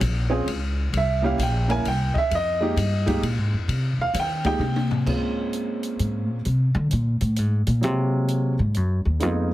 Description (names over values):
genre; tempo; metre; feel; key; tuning
jazz piano trio; 131 BPM; 3/4; swing 65% on 8ths; F minor, Bb minor from 5.1 s; A4 = 440 Hz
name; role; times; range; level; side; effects
upright bass; bass; 0.0-9.5 s; Bb1 to Eb3; -22 LUFS; equal; none
open jazz drum kit; drums; 0.0-9.3 s; crash cymbal, hi-hat, kick drum, ride cymbal, toms; -30 LUFS; left 3 dB; none
warm upright piano; melody; 0.3-9.5 s; Gb3 to Ab5; -25 LUFS; right 2 dB; plate reverb
room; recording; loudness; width
light reverb; heavily compressed radio sound, multiband compression; -21 LUFS; side -15 dB against mid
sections
0.0-5.1 A section; 5.1-9.5 A section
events
upright piano solo 0.0-5.1; drum fill 4.6-5.1; upright bass solo 5.1-9.5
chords
0.0 Bbm; 0.9 C7b9; 2.3 F7sus2; 5.1 Bbm7; 6.4 Bb7; 7.8 Ebm11 (rootless)